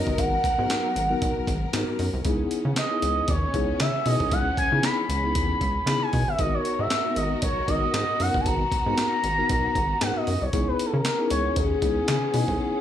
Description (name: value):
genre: early-eighties boogie funk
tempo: 116 BPM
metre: 4/4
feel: swing 56% on 16ths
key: G# minor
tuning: A4 = 441 Hz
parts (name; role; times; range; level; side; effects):
- expressive synth lead; melody; 0.0-12.8 s; G#4 to B5; -26 LUFS; equal; chorus, slapback echo
- mellow tine electric piano; accompaniment; 0.0-12.8 s; A#3 to A#4; -30 LUFS; left 3 dB; medium stereo tremolo
- warm symphonic string section; sustained chords; 0.0-12.8 s; B2 to A#4; -34 LUFS; left 1 dB; none
- rubbery square bass; bass; 0.0-12.6 s; G1 to C#3; -27 LUFS; equal; none
- breakbeat sampler-style drum kit; drums; 0.1-12.6 s; handclaps, hi-hat, kick drum, snare drum; -28 LUFS; equal; none
room: light reverb, digital ambience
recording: studio ambience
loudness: -22 LUFS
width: side -10 dB against mid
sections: 0.0-12.8 A section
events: break 12.6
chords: 0.0 G#m9; 2.3 C#m9; 6.4 G#m9; 10.5 C#m9